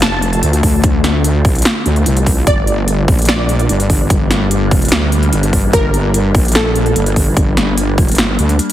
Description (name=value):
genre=heavy wobble dubstep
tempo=147 BPM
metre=4/4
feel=half-time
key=unclear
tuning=A4 = 440 Hz
part: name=wide unison pluck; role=melody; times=0.0-7.1 s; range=A4 to A5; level=-20 LUFS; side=equal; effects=ensemble chorus, tape echo
part: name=evolving wavetable pad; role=sustained chords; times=0.0-8.7 s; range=D3 to F4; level=-21 LUFS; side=left 1 dB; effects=chorus, built-in reverb, phaser, sidechain pumping
part: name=wobble bass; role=bass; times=0.0-8.6 s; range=F1 to D2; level=-14 LUFS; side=equal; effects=chorus, overdrive
part: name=big-room dance drum kit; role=drums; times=0.0-8.7 s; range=hi-hat, snare drum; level=-17 LUFS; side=equal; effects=none
part: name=electronic kick drum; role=drums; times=0.6-8.1 s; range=none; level=-14 LUFS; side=equal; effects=none
room=light reverb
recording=heavily compressed radio sound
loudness=-11 LUFS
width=side -12 dB against mid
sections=0.0-8.7 A section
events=none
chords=0.0 Dm; 2.5 Gm